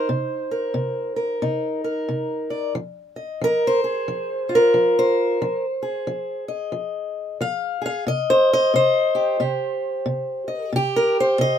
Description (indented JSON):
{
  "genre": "acoustic country blues, solo or duo",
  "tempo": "90 BPM",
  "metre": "4/4",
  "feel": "swing 62% on 8ths",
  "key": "C minor",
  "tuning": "A4 = 443 Hz",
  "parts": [
    { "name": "fingerpicked steel-string acoustic guitar", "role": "solo", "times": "0.0-11.6 s", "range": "C3 to F5", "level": "-19 LUFS", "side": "equal", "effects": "none" }
  ],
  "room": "moderate booth ambience, RT60 0.2 s",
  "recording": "minimal, uncompressed stereo recording",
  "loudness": "-19 LUFS",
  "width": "side -9 dB against mid",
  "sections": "0.0-11.6 A section",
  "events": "none",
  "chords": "0.0 Cm7; 2.8 Fm7; 8.1 Cm"
}